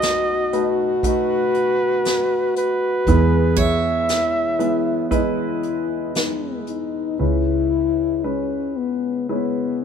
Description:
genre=acoustic folk-pop ballad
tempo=58 BPM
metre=4/4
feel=straight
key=E major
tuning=A4 = 440 Hz
part: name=breathy flugelhorn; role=melody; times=0.0-5.1 s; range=B4 to E5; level=-22 LUFS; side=right 3 dB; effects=none
part: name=dark French horn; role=second line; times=0.0-9.8 s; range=B3 to G#4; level=-22 LUFS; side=left 4 dB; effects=none
part: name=warm baby grand piano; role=accompaniment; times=0.0-9.8 s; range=B1 to D#5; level=-24 LUFS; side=right 1 dB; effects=none
part: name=vintage muted fingered electric bass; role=bass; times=0.0-9.8 s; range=B1 to E2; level=-22 LUFS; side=right 1 dB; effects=none
part: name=vintage brush drum kit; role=drums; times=0.0-6.9 s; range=hi-hat, kick drum, snare drum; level=-24 LUFS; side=right 1 dB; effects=none
part: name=picked steel-string acoustic guitar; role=arpeggios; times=3.6-6.5 s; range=C#5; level=-30 LUFS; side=right 4 dB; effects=none
room=little or no reverb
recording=minimal, uncompressed stereo recording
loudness=-18 LUFS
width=side -7 dB against mid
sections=0.0-7.2 A section; 7.2-9.8 B section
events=French horn solo 7.2-9.8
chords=0.0 B7; 3.1 Emaj7; 7.2 C#m7

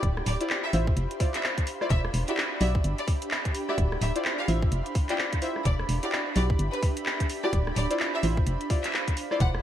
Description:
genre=UK garage, two-step garage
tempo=128 BPM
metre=4/4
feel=swing 60% on 16ths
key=unclear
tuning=A4 = 440 Hz
part: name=warm analog pad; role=sustained chords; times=0.0-9.6 s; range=B5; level=-40 LUFS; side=right 2 dB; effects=chorus, sidechain pumping
part: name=organ-like FM bass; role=bass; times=0.0-9.6 s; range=D1 to B1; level=-27 LUFS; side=equal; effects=tube saturation
part: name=electronic kick drum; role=drums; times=0.0-9.5 s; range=none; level=-26 LUFS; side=equal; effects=none
part: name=garage drum kit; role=drums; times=0.0-9.6 s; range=handclaps, hi-hat, rim click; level=-32 LUFS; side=equal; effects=gated reverb
part: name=ethereal airy pad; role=texture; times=0.1-9.6 s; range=D4 to F5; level=-36 LUFS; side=right 2 dB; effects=ensemble chorus, built-in reverb, sidechain pumping
part: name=bright studio violin section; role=melody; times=0.3-9.5 s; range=B4 to G5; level=-36 LUFS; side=left 1 dB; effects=none
part: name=deep mellow chord stab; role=stabs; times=0.4-9.4 s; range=E4 to E5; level=-32 LUFS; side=left 1 dB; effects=chorus
room=light reverb, digital ambience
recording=bright 1980s-style digital production, vinyl crackle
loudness=-24 LUFS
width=side -11 dB against mid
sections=0.0-9.6 A section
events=none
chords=0.0 Dm9; 1.9 Em9; 3.8 Dm9; 5.7 Em9; 7.5 Dm9

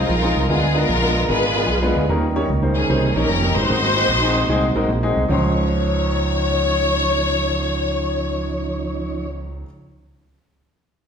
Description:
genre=uptempo gospel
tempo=150 BPM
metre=4/4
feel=swing 66% on 8ths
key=Db major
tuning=A4 = 441 Hz
part: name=warm studio string section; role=melody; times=0.0-9.3 s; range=Cb4 to Db5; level=-21 LUFS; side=left 2 dB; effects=none
part: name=warm upright piano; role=accompaniment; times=0.0-9.7 s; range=Db2 to C6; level=-23 LUFS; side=left 1 dB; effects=none
part: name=mellow tonewheel organ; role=sustained chords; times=0.0-9.3 s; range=Eb3 to Db5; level=-26 LUFS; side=right 4 dB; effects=fast rotary speaker, chorus vibrato
part: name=fingered electric bass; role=bass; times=0.0-9.6 s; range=F1 to Eb2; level=-22 LUFS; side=right 1 dB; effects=none
room=wet recital hall reverb, RT60 1.4 s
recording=recorded in a church or concert hall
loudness=-17 LUFS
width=side -7 dB against mid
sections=0.0-5.3 A section; 5.3-8.5 B section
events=none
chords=0.5 Bb7b9; 2.1 Eb7; 3.7 Ab9; 5.3 Dbmaj9

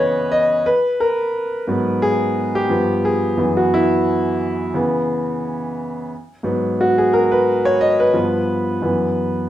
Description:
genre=soul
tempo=88 BPM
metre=4/4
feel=swing 54% on 16ths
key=G# minor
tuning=A4 = 439 Hz
part: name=clear concert grand piano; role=solo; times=0.0-9.5 s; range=F#2 to D#5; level=-16 LUFS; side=equal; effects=slapback echo
room=wet studio reverb, RT60 0.5 s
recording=rough home demo mix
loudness=-16 LUFS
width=side -12 dB against mid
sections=0.0-9.5 A section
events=grand piano solo 0.0-9.5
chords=0.0 C#m7; 0.7 G#m9; 2.7 G7; 3.4 F#7sus4; 4.7 C#m7; 6.1 G#m7; 8.2 G7; 8.8 F#7sus4

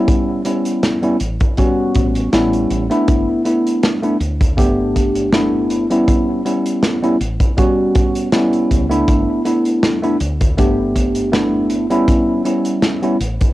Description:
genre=vaporwave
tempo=80 BPM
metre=4/4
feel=swing 54% on 16ths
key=unclear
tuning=A4 = 440 Hz
part: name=tine electric piano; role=accompaniment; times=0.0-13.2 s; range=G3 to G4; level=-16 LUFS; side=equal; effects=wide subtle chorus, cassette tape, analog delay
part: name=woody fretless electric bass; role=bass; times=0.0-13.4 s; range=G1 to D2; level=-23 LUFS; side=equal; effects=tube saturation
part: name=kick drum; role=drums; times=0.1-13.5 s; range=none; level=-16 LUFS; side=equal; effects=cassette tape
part: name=modern studio drum kit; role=drums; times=0.1-13.5 s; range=hi-hat, snare drum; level=-22 LUFS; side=equal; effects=cassette tape
room=light reverb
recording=home recording on cassette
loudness=-14 LUFS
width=side -16 dB against mid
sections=0.0-13.5 A section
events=none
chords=0.1 A7; 3.1 G69; 6.1 A7 (rootless); 9.1 G69; 12.1 A7 (rootless)

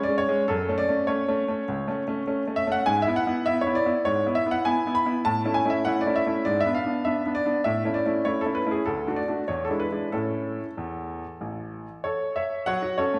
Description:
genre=classical-period piano sonatina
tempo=93-102 BPM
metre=4/4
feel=rubato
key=A major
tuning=A4 = 440 Hz
part: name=bright baby grand piano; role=solo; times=0.0-13.2 s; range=A1 to B5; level=-26 LUFS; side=equal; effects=none
room=wet recital hall reverb, RT60 1.7 s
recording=heard from further back in the room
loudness=-25 LUFS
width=mono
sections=0.0-12.7 A section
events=none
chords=0.5 F#m; 2.9 E/G#; 5.3 A; 6.5 G#dim; 7.7 A; 8.9 D; 9.5 E7; 10.1 A; 12.7 F#m

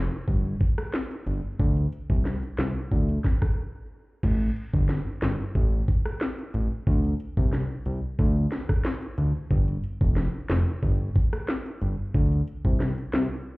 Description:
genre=dancehall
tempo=91 BPM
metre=4/4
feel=straight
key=unclear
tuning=A4 = 438 Hz
part: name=fat analog bass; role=bass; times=0.0-13.3 s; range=F1 to D2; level=-24 LUFS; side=equal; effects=none
part: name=island pop drum kit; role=drums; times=0.3-13.3 s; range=crash cymbal, handclaps, hi-hat, kick drum, rim click, snare drum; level=-26 LUFS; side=equal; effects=none
room=little or no reverb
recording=heard muffled through a wall, club reverb, EQ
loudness=-23 LUFS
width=side -23 dB against mid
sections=0.0-4.2 A section; 4.2-13.6 B section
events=break 3.6-4.2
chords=none

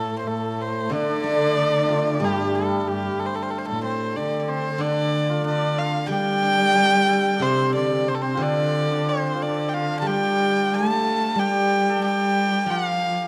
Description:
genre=chinese traditional, Chinese chamber ensemble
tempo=92 BPM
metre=4/4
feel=straight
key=G shang mode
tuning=A4 = 445 Hz
part: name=warm erhu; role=melody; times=0.0-13.3 s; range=G4 to A5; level=-25 LUFS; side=equal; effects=none
part: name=dark cello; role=second line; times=0.0-13.3 s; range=G2 to A3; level=-29 LUFS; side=equal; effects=none
part: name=hammered dulcimer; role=second line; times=0.0-13.3 s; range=G3 to A4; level=-31 LUFS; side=equal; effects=none
part: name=steel-string zither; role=accompaniment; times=0.0-13.3 s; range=A2 to A4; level=-30 LUFS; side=equal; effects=none
room=moderate recital hall reverb, RT60 1.5 s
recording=close, detailed microphones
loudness=-22 LUFS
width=mono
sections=0.0-13.3 A section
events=none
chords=none

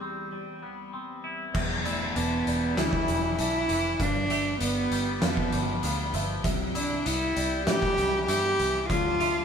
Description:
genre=post-rock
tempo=98 BPM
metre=4/4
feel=straight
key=unclear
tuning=A4 = 437 Hz
part: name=warm cello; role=melody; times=0.0-9.4 s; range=G3 to G4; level=-28 LUFS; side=right 1 dB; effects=none
part: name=bright symphonic string section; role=sustained chords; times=0.0-9.4 s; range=E2 to A5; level=-41 LUFS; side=left 1 dB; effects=none
part: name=twangy electric guitar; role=arpeggios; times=0.0-9.4 s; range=E2 to G4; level=-33 LUFS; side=left 2 dB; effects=phaser
part: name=felt-muted upright piano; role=arpeggios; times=1.5-9.4 s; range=D5 to F5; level=-40 LUFS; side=right 5 dB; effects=none
part: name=fingered electric bass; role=bass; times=1.5-9.4 s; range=E1 to A2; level=-33 LUFS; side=equal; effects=none
part: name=oversized low-tuned drum kit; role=drums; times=1.5-9.3 s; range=crash cymbal, hi-hat, kick drum, snare drum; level=-30 LUFS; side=equal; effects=none
room=moderate stone room reverb, RT60 1.0 s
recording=band playing live in one room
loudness=-24 LUFS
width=side -7 dB against mid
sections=0.0-1.5 A section; 1.5-9.4 B section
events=none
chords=0.0 Cmaj7/E; 1.5 Em7; 4.0 G7; 6.4 Cmaj7; 8.9 Dm

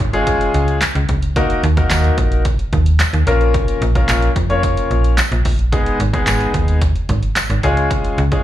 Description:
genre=dance-pop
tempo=110 BPM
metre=4/4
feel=straight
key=G# dorian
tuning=A4 = 440 Hz
part: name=slap-like FM bass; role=bass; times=0.0-8.4 s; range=G#1 to E#2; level=-16 LUFS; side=equal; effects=sidechain pumping
part: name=punchy analog drum machine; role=drums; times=0.0-8.4 s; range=handclaps, hi-hat, kick drum, snare drum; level=-19 LUFS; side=equal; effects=none
part: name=downlifter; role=sound effects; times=0.0-1.4 s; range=none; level=-38 LUFS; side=right 1 dB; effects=none
part: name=clear baby grand piano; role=accompaniment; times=0.1-8.4 s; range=G#3 to C#5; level=-18 LUFS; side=left 2 dB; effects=sidechain pumping, slapback echo
part: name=tambourine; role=percussion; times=0.8-7.5 s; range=none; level=-31 LUFS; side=right 3 dB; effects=none
room=little or no reverb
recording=live gig heard through the venue's PA, club reverb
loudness=-13 LUFS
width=side -13 dB against mid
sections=0.0-8.4 A section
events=none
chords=0.0 C#; 1.4 D#m; 3.3 A#m; 5.7 G#m; 7.6 C#

